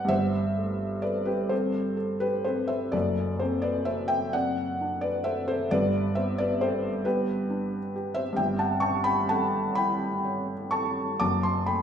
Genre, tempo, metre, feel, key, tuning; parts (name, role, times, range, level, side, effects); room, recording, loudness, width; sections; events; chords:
classical, romantic nocturne for solo piano; 43 BPM (dotted quarters); 6/8; uneven beats, rubato; A4 = 442 Hz
felt-muted upright piano; solo; 0.0-11.8 s; F#1 to D6; -25 LUFS; equal
wet recital hall reverb, RT60 1.4 s; minimal, uncompressed stereo recording; -25 LUFS; side -8 dB against mid
0.0-11.8 A section
0.1 Am7/G; 2.9 D7/F#; 5.7 G; 8.4 A7/G; 11.2 D/F#